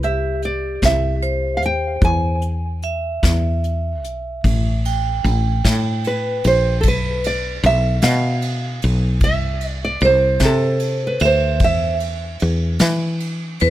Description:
acoustic folk-pop ballad; 50 BPM (dotted quarters); 6/8; straight; A minor; A4 = 443 Hz
nylon-string guitar; melody; 0.0-13.6 s; A4 to G#5; -20 LUFS; right 2 dB; analog delay
vibraphone with hard mallets; arpeggios; 0.0-13.7 s; G4 to G5; -24 LUFS; right 2 dB
woody fretless electric bass; bass; 0.0-13.7 s; A1 to E3; -19 LUFS; equal
soft brush drum kit; drums; 0.0-13.7 s; hi-hat, kick drum, ride cymbal, snare drum; -23 LUFS; equal
little or no reverb; close, detailed microphones; -16 LUFS; side -14 dB against mid
0.0-4.4 A section; 4.4-13.7 B section
0.0 C; 2.0 E; 4.4 A5; 6.8 B(b5, no3); 9.2 C69; 11.6 E5

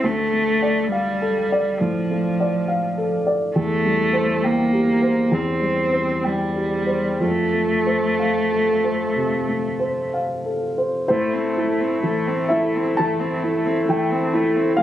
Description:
neoclassical piano and strings; 60-69 BPM; 4/4; rubato; A4 = 440 Hz
muted cello; second line; 0.0-14.8 s; F3 to C4; -22 LUFS; right 1 dB
dark upright piano; accompaniment; 0.0-14.8 s; D2 to A5; -21 LUFS; left 1 dB
pedal harmonium; sustained chords; 11.1-14.8 s; A3 to A4; -24 LUFS; left 2 dB
little or no reverb; recorded on a phone in the room, studio ambience, compression; -18 LUFS; side -12 dB against mid
0.0-11.1 A section; 11.1-14.8 B section
0.0 Dm; 3.6 C/E; 7.2 F; 11.1 Am

